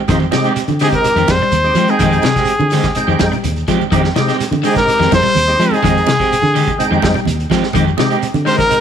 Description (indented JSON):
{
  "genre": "afrobeat",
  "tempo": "126 BPM",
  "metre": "4/4",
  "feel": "straight",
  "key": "F dorian",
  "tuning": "A4 = 440 Hz",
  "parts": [
    { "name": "percussive tonewheel organ", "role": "accompaniment", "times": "0.1-8.8 s", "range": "Ab3 to G5", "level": "-20 LUFS", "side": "equal", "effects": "overdrive, chorus vibrato, slow rotary speaker" },
    { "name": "electric guitar at the edge of break-up", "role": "arpeggios", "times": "0.1-8.6 s", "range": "C3 to Ab3", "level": "-20 LUFS", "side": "left 9 dB", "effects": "analog chorus, slapback echo" },
    { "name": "electric guitar at the edge of break-up", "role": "stabs", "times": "0.1-8.6 s", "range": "Eb3 to G4", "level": "-21 LUFS", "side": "right 9 dB", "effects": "wide subtle chorus" },
    { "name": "fingered electric bass", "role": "bass", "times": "0.1-8.5 s", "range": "Eb2 to F3", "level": "-18 LUFS", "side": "equal", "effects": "none" },
    { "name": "vintage drum kit", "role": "drums", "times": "0.1-8.8 s", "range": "hi-hat, kick drum, snare drum", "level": "-22 LUFS", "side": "equal", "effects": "none" },
    { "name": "congas", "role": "percussion", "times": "0.1-8.5 s", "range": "none", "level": "-24 LUFS", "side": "right 10 dB", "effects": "none" },
    { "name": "shekere", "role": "percussion", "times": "0.1-8.8 s", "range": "none", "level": "-29 LUFS", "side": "right 8 dB", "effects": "none" },
    { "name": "bright trumpet", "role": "melody", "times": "0.8-8.8 s", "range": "Ab4 to C5", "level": "-15 LUFS", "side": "equal", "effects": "none" }
  ],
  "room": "light reverb, studio reverb",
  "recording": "1960s-style stereo with parts hard left and right",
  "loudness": "-11 LUFS",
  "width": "side -8 dB against mid",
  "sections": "0.0-8.8 A section",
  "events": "none",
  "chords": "0.0 Fm9"
}